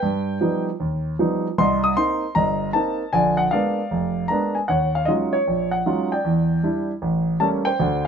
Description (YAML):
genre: solo jazz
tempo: 154 BPM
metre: 4/4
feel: swing 66% on 8ths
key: unclear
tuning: A4 = 440 Hz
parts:
  - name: warm concert grand piano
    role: solo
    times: 0.0-8.1 s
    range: F1 to Eb6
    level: -19 LUFS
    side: right 1 dB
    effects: none
room: light reverb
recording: minimal, uncompressed stereo recording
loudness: -19 LUFS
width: side -7 dB against mid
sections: 0.0-8.1 A section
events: none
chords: 0.0 Gaug7; 1.6 Cm7; 3.1 Bb7b9; 4.7 Ebm11; 6.2 Em7; 7.0 A7b9